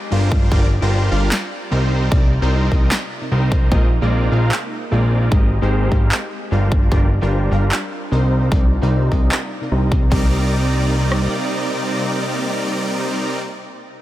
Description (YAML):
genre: future bass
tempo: 150 BPM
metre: 4/4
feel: half-time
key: C minor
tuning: A4 = 437 Hz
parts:
  - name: shimmering ambient pad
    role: sustained chords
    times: 0.0-13.4 s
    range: C3 to D5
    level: -29 LUFS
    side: right 1 dB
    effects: chorus, built-in reverb, sidechain pumping
  - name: glassy digital keys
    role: accompaniment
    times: 0.1-13.4 s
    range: C3 to G5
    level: -28 LUFS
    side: left 2 dB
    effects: chorus, sidechain pumping, digital delay
  - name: supersaw chords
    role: riff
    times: 0.1-13.4 s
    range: G3 to F5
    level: -22 LUFS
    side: equal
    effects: sidechain pumping, low-pass filter, digital delay
  - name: fat analog bass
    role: bass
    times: 0.1-11.3 s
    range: G1 to C2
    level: -17 LUFS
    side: equal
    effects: sidechain pumping
  - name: big-room dance drum kit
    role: drums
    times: 0.3-11.2 s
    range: kick drum, rim click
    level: -16 LUFS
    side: equal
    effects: none
  - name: electronic snare drum and handclaps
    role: drums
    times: 1.3-9.4 s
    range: none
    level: -24 LUFS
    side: right 1 dB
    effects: none
room: little or no reverb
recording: none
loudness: -15 LUFS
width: side -14 dB against mid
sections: 0.0-10.1 A section; 10.1-13.3 B section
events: filter sweep on supersaw synth 0.0-10.1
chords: 0.3 Gm7; 1.9 Cm9; 3.7 Bb9sus4; 5.3 Abmaj9; 6.7 Gm7; 8.3 Cm9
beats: 0.12 | 0.52 0.92 1.32 1.72 | 2.12 2.52 2.92 3.32 | 3.72 4.12 4.52 4.92 | 5.32 5.72 6.12 6.52 | 6.92 7.32 7.72 8.12 | 8.52 8.92 9.32 9.72 | 10.12 10.52 10.92 11.32 | 11.72 12.12 12.52 12.92